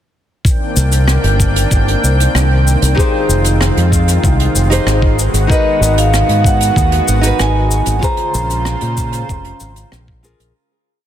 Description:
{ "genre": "sunset chillout", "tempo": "95 BPM", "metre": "4/4", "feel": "straight", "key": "C phrygian", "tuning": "A4 = 440 Hz", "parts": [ { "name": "lush unison pad", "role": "sustained chords", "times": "0.4-10.5 s", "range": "Db3 to G5", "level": "-19 LUFS", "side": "equal", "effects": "chorus" }, { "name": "electronic kick drum", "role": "drums", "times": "0.4-10.2 s", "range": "none", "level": "-15 LUFS", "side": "equal", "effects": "none" }, { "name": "jazz brush drum kit", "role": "drums", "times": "0.5-10.5 s", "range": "cabasa, hi-hat, rim click", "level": "-21 LUFS", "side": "left 1 dB", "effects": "none" }, { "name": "fingered electric bass with an envelope filter", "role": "bass", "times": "0.8-10.5 s", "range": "F1 to Bb2", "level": "-14 LUFS", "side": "equal", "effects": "none" }, { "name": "nylon-string guitar", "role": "accompaniment", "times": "2.9-10.5 s", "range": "Db4 to C5", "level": "-20 LUFS", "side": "moving between left 5 dB and right 3 dB", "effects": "auto-pan, digital delay" }, { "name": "vibraphone with medium mallets", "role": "melody", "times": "5.5-9.9 s", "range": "Eb5 to Bb5", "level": "-18 LUFS", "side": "right 2 dB", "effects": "ping-pong delay" } ], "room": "light reverb, small room ambience", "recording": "dense, heavily limited modern master", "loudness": "-11 LUFS", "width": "side -11 dB against mid", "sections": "0.4-10.6 groove", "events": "fade-out 7.2-10.6", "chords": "0.4 Cm9; 3.0 Fm9; 5.2 Abm9; 8.0 Bbm9" }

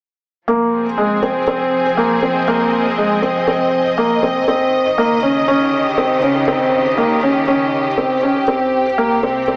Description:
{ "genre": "electronica", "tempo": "120 BPM", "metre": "4/4", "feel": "straight", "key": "F minor", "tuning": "A4 = 440 Hz", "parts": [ { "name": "warm studio string section", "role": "sustained chords", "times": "0.5-9.6 s", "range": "C3 to Eb5", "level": "-21 LUFS", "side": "equal", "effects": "none" }, { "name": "felt-muted upright piano", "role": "riff", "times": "0.5-9.6 s", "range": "Ab3 to Db4", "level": "-17 LUFS", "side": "equal", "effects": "digital delay" }, { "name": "warm sub bass", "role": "bass", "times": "0.5-9.6 s", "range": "Eb1 to C2", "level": "-45 LUFS", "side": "equal", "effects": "none" } ], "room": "wet echo chamber reverb, RT60 1.9 s", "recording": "small speaker sound", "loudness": "-16 LUFS", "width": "mono", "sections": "0.5-9.6 A section", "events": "none", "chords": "0.5 Fm7; 4.5 Eb7; 8.5 C5" }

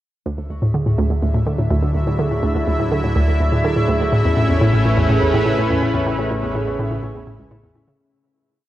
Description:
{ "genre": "ambient, sequencer-driven space music", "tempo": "124 BPM", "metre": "4/4", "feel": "straight", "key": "D lydian", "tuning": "A4 = 440 Hz", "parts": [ { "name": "lush unison pad", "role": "sustained chords", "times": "0.3-8.0 s", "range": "F#3 to E5", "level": "-23 LUFS", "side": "equal", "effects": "chorus" }, { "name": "concert harp", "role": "arpeggios", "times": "0.3-8.7 s", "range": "C#3 to D5", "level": "-26 LUFS", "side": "moving between left 2 dB and right 5 dB", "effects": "auto-pan, tape echo" }, { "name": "hollow square pluck", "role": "riff", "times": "0.3-7.9 s", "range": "C#2 to D3", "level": "-18 LUFS", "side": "equal", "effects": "chorus, tape echo" }, { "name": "fat analog bass", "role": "bass", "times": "0.3-8.0 s", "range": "A1 to D2", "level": "-27 LUFS", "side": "equal", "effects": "none" }, { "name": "bubbling stepped-filter texture", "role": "texture", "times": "1.0-8.0 s", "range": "E4 to E5", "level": "-28 LUFS", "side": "left 1 dB", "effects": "chorus, built-in reverb" } ], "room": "moderate huge ambient reverb, RT60 8.4 s", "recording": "worn, warbling old tape, cassette tape, warbly pitch drift", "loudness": "-16 LUFS", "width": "side -14 dB against mid", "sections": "0.3-8.0 A section", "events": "fade-in on harp 0.3-8.0; fade-in on analog synth pad 0.3-8.0; fade-in on synth texture 0.3-8.0; fade-out 5.4-8.0", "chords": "0.3 Dadd9; 4.1 Aadd9" }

